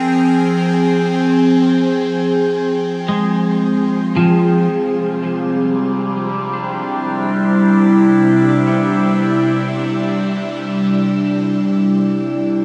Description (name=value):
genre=ambient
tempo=free time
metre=none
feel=none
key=unclear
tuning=A4 = 439 Hz
part: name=evolving wavetable pad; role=sustained chords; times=0.0-12.6 s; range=C3 to G5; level=-16 LUFS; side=equal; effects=phaser, built-in reverb
part: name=clean electric guitar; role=arpeggios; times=0.0-12.3 s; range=F3 to Bb4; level=-24 LUFS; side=equal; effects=analog chorus, tape echo
room=wet shimmer reverb, RT60 8.2 s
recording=studio ambience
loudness=-16 LUFS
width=mono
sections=0.0-4.7 A section; 4.7-12.6 B section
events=none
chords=0.0 Fm; 4.7 Cmaj7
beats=free time